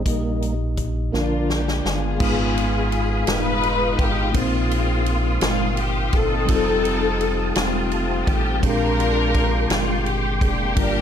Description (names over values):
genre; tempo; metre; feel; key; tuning
slow gospel; 56 BPM (dotted quarters); 6/8; straight; unclear; A4 = 439 Hz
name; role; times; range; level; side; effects
mellow tine electric piano; accompaniment; 0.0-11.0 s; G2 to Eb5; -26 LUFS; left 2 dB; medium stereo tremolo
tonewheel organ; sustained chords; 0.0-11.0 s; F3 to Eb6; -28 LUFS; right 2 dB; slow rotary speaker, overdrive, chorus vibrato
rubbery square bass; bass; 0.0-11.0 s; F1 to Bb1; -25 LUFS; equal; none
swinging big-band drum kit; drums; 0.1-10.9 s; crash cymbal, hi-hat, kick drum, ride cymbal, snare drum; -25 LUFS; equal; none
warm studio string section; melody; 1.1-11.0 s; Ab3 to Cb5; -23 LUFS; left 3 dB; tape echo
room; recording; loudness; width
small room ambience; none; -18 LUFS; side -8 dB against mid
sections
0.0-2.2 A section; 2.2-11.0 B section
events
tonewheel organ solo 0.0-2.2; drum fill 1.1-2.2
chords
0.1 Eb/Bb; 1.1 Bb; 2.2 Abm6; 4.4 Bb9sus4; 6.5 F9; 8.6 Bb13